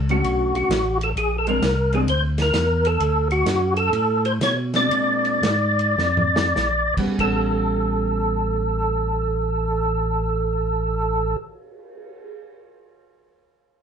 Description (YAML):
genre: soul jazz organ trio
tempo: 92-131 BPM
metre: 4/4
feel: swing 66% on 8ths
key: A mixolydian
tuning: A4 = 442 Hz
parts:
  - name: tonewheel organ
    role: bass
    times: 0.0-11.3 s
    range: A1 to B2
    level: -24 LUFS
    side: equal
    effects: slow rotary speaker
  - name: percussive tonewheel organ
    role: melody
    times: 0.1-11.4 s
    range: F#4 to D5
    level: -21 LUFS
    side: right 1 dB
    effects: slow rotary speaker, chorus vibrato
  - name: vintage hollow-body jazz guitar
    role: accompaniment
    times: 0.1-11.4 s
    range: D3 to F#4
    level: -26 LUFS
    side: right 1 dB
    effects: none
  - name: warm soul drum kit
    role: drums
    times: 0.1-12.3 s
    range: crash cymbal, cymbal swell, hi-hat, kick drum, ride cymbal, snare drum, toms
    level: -29 LUFS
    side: equal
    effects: none
room: moderate studio reverb, RT60 0.6 s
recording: band playing live in one room, nothing above 10.8 kHz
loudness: -19 LUFS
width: side -7 dB against mid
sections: 0.0-7.2 A section; 7.2-12.4 B section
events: slowing down 3.0-7.2; drum fill 6.0-6.6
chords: 0.0 Dmaj7; 1.2 Bb9; 3.0 D; 4.9 Bb9; 7.2 A9